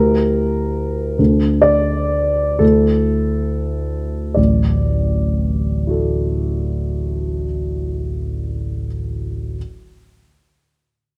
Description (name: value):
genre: classical, impressionist solo piano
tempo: 30-48 BPM (dotted quarters)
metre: 6/8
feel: rubato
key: D major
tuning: A4 = 438 Hz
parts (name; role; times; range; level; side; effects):
- clear grand piano; solo; 0.0-9.6 s; D1 to D5; -18 LUFS; equal; none
room: light reverb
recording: close, detailed microphones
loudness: -19 LUFS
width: mono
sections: 0.0-4.4 A section; 4.4-7.4 B section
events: slowing down 0.0-4.4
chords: 0.0 Gm6/D; 1.2 D5; 2.6 Dsus2; 4.4 Dadd9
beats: | 1.19 2.61 | 4.37 5.87